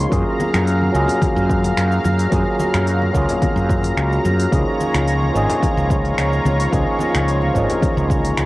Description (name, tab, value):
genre	sunset chillout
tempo	109 BPM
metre	4/4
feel	straight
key	Db major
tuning	A4 = 439 Hz
part	overdriven tine electric piano	accompaniment	0.0-8.5 s	F3 to Ab4	-21 LUFS	equal	auto-pan, cassette tape, analog delay
part	lush unison pad	sustained chords	0.0-8.5 s	Gb3 to Bb5	-23 LUFS	equal	chorus, cassette tape
part	mellow fretless electric bass	bass	0.0-8.5 s	Ab1 to Gb2	-19 LUFS	equal	tube saturation
part	deep house drum kit	drums	0.0-8.5 s	finger snaps, hi-hat, shaker	-27 LUFS	equal	cassette tape
part	electronic kick drum	drums	0.1-8.2 s	none	-21 LUFS	equal	cassette tape
part	congas	percussion	0.4-8.3 s	none	-28 LUFS	left 2 dB	none
room	moderate spring reverb, RT60 1.7 s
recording	home recording on cassette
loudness	-15 LUFS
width	side -19 dB against mid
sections	0.0-8.5 A section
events	none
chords	0.1 Gbmaj7; 4.5 Db6